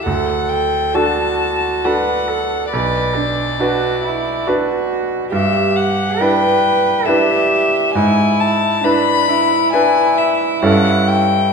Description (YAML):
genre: classical, slow romantic movement for piano trio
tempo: 68 BPM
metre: 3/4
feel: rubato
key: unclear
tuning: A4 = 440 Hz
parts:
  - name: warm violin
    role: melody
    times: 0.0-11.5 s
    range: D5 to B5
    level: -17 LUFS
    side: left 7 dB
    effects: none
  - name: warm cello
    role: second line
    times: 0.0-11.5 s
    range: D4 to B4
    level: -20 LUFS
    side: right 5 dB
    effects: none
  - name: bright concert grand piano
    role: accompaniment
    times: 0.0-11.5 s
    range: B1 to B4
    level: -18 LUFS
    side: right 2 dB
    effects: none
room: wet recital hall reverb, RT60 1.4 s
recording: minimal, uncompressed stereo recording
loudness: -13 LUFS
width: side -5 dB against mid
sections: 0.0-11.5 A section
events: none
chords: 0.1 D; 2.7 Bm; 5.3 Em7/G; 8.0 E7/G#; 10.6 A7/G